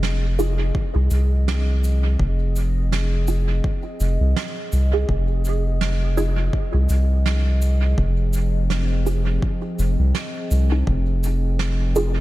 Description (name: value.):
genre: ambient dub.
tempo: 83 BPM.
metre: 4/4.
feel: swing 56% on 16ths.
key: F minor.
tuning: A4 = 441 Hz.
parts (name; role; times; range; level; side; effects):
warbly tape-like pad; sustained chords; 0.0-12.2 s; F3 to Eb5; -30 LUFS; right 1 dB; chorus, built-in reverb, vintage 12-bit sampler grit.
soft dub sub bass; bass; 0.0-12.2 s; F1 to C2; -19 LUFS; equal; none.
snare drum and cabasa; drums; 0.0-12.1 s; none; -30 LUFS; right 5 dB; dub echo.
filtered dub chord stab; stabs; 0.4-12.1 s; Eb4 to Ab4; -28 LUFS; right 3 dB; phaser, analog chorus, dub echo.
electronic kick drum; drums; 0.7-11.0 s; none; -24 LUFS; equal; none.
room: small room ambience.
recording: none.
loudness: -18 LUFS.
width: side -17 dB against mid.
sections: 0.0-12.2 A section.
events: fade-in on ambient pad 0.0-12.2; filter sweep on synth stab 0.0-12.2.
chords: 0.0 Fm7.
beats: 0.03 0.75 1.47 | 2.20 2.92 3.64 4.37 | 5.09 5.81 6.53 7.26 | 7.98 8.70 9.43 10.15 | 10.87 11.59.